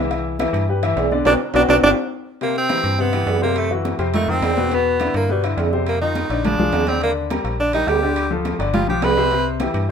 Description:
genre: Afro-Cuban jazz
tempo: 208 BPM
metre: 4/4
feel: straight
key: C major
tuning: A4 = 439 Hz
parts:
  - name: warm baby grand piano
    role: accompaniment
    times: 0.0-9.9 s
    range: B2 to E5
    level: -22 LUFS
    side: left 5 dB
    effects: none
  - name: metallic FM bass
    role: bass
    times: 0.0-9.9 s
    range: G1 to G2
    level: -24 LUFS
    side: equal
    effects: none
  - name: congas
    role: percussion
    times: 0.1-9.9 s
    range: none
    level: -26 LUFS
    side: equal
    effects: none
  - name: timbales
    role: percussion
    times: 0.1-9.9 s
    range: none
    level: -26 LUFS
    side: right 6 dB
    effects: none
  - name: edgy tenor saxophone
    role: melody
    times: 1.3-9.5 s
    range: G3 to B4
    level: -20 LUFS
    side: right 2 dB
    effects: none
room: moderate studio reverb, RT60 0.8 s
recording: minimal, uncompressed stereo recording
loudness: -17 LUFS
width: side -7 dB against mid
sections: 0.0-2.4 A section; 2.4-9.9 B section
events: band accent 1.3-2.4; drum fill 2.0-2.4; tenor saxophone solo 2.4-9.9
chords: 0.1 Cmaj7; 1.3 Bm; 1.8 G5; 2.4 Cmaj7; 3.6 Am6; 4.1 F5; 4.7 Em7; 5.9 F5; 6.4 Bb9; 7.0 Ebmaj7; 8.2 Dm; 8.7 G7; 9.3 Cmaj7

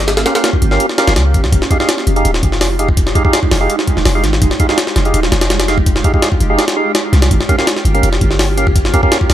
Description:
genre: drum and bass, jungle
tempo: 166 BPM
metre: 4/4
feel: straight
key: F minor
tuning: A4 = 440 Hz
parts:
  - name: granular cloud pad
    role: sustained chords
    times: 0.0-9.3 s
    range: Ab3 to G4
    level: -21 LUFS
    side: right 1 dB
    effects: built-in reverb
  - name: warm 808-style bass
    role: bass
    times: 0.0-9.3 s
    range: Eb1 to Db2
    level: -14 LUFS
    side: equal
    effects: none
  - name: jungle sampler-style drum kit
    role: drums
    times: 0.1-9.3 s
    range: hi-hat, kick drum, snare drum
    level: -14 LUFS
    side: equal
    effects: none
  - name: tonewheel organ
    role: stabs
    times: 0.3-9.2 s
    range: Db4 to F5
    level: -18 LUFS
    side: right 2 dB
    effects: slow rotary speaker, dub echo
room: digital ambience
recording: none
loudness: -11 LUFS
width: side -12 dB against mid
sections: 0.0-9.3 A section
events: none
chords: 0.0 Gm7b5; 1.5 Fm9; 7.3 Gm7b5

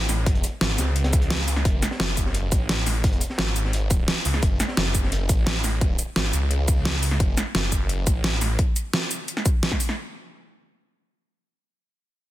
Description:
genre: dark technical drum and bass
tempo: 173 BPM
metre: 4/4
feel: straight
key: F# minor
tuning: A4 = 439 Hz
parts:
  - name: snarling distorted saw bass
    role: bass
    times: 0.0-8.6 s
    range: F#1 to C#2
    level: -24 LUFS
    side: equal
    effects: distortion, tube saturation, sidechain pumping
  - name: crunchy breakbeat drum kit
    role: drums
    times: 0.1-5.7 s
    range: hi-hat, snare drum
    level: -34 LUFS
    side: equal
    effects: none
  - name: dubstep drum kit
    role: drums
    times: 0.1-10.0 s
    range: hi-hat, shaker, snare drum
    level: -25 LUFS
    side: equal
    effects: overdrive
  - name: electronic kick drum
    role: drums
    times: 0.3-9.8 s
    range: none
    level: -22 LUFS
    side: equal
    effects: overdrive
room: little or no reverb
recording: dense, heavily limited modern master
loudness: -20 LUFS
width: side -15 dB against mid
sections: 0.0-10.0 A section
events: drop 0.0-10.0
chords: none

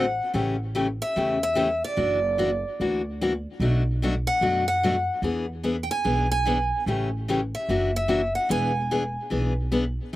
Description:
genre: acoustic string swing (jazz manouche)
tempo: 147 BPM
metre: 4/4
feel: swing 62% on 8ths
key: unclear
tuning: A4 = 438 Hz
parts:
  - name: picked steel-string acoustic guitar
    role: melody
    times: 0.0-9.7 s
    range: D5 to G#5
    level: -25 LUFS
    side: right 1 dB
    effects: slapback echo
  - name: picked steel-string acoustic guitar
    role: accompaniment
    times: 0.0-10.2 s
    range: B2 to G#4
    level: -26 LUFS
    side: left 2 dB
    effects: slapback echo
  - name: upright bass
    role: bass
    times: 0.0-10.2 s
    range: E1 to F#2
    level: -28 LUFS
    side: right 1 dB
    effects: none
room: little or no reverb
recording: recorded outdoors, with no room sound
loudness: -22 LUFS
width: side -15 dB against mid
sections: 0.0-10.1 A section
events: none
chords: 0.3 A7; 2.0 F#aug7; 3.6 Bm7; 5.2 E7; 6.9 A7; 7.7 F#aug7; 8.5 E7

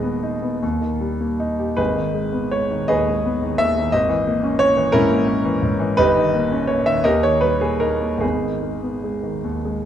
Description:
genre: classical, romantic character piece for solo piano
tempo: 47-61 BPM (dotted quarters)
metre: 6/8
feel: rubato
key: G# minor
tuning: A4 = 440 Hz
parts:
  - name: warm grand piano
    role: solo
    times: 0.0-9.9 s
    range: D#1 to E5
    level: -17 LUFS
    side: equal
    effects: none
room: moderate scoring stage reverb, RT60 1.5 s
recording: dark, warm production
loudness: -17 LUFS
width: side -10 dB against mid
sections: 0.0-9.9 A section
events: none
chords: 0.0 G#m/D#; 0.6 D#; 1.8 G#m; 3.9 A#m7b5/G#; 6.0 D#7/G; 7.0 D#; 8.2 G#m

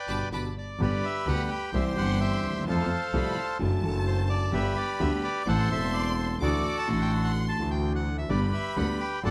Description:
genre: tango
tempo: 128 BPM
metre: 4/4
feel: rubato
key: G major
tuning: A4 = 440 Hz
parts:
  - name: bandoneon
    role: melody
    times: 0.0-9.3 s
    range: F#4 to A5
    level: -33 LUFS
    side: equal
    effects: none
  - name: warm studio violin section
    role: second line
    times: 0.1-9.3 s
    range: A5 to D6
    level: -41 LUFS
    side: equal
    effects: none
  - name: warm concert grand piano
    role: accompaniment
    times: 0.1-9.3 s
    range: E1 to A4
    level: -33 LUFS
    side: equal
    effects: none
  - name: clear double bass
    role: bass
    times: 0.1-9.3 s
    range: E1 to F2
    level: -32 LUFS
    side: equal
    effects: none
room: light reverb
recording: none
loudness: -28 LUFS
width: mono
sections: 0.8-9.3 A section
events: band accent 0.0-0.8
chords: 0.0 Gadd9; 1.7 C; 2.7 F; 3.6 D/F#; 4.5 G; 5.5 Am; 6.4 Dadd9; 8.3 G

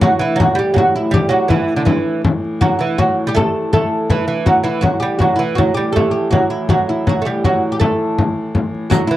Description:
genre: medieval dance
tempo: 162 BPM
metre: 3/4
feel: straight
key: unclear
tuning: A4 = 440 Hz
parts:
  - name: oud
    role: melody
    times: 0.0-9.2 s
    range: D4 to A4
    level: -18 LUFS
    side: equal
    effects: none
  - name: lute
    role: second line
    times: 0.0-9.2 s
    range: D3 to A3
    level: -19 LUFS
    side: right 4 dB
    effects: none
  - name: dark hurdy-gurdy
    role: drone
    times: 0.0-9.2 s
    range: A2 to E3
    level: -23 LUFS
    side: left 1 dB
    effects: none
  - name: frame drum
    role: percussion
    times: 0.0-9.2 s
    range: none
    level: -17 LUFS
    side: left 2 dB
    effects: none
  - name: riq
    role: percussion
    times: 8.9-9.1 s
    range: none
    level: -22 LUFS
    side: left 8 dB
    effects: none
room: light reverb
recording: dry, close 1970s-style studio recording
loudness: -13 LUFS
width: side -14 dB against mid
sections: 0.0-8.9 A section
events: none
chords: none

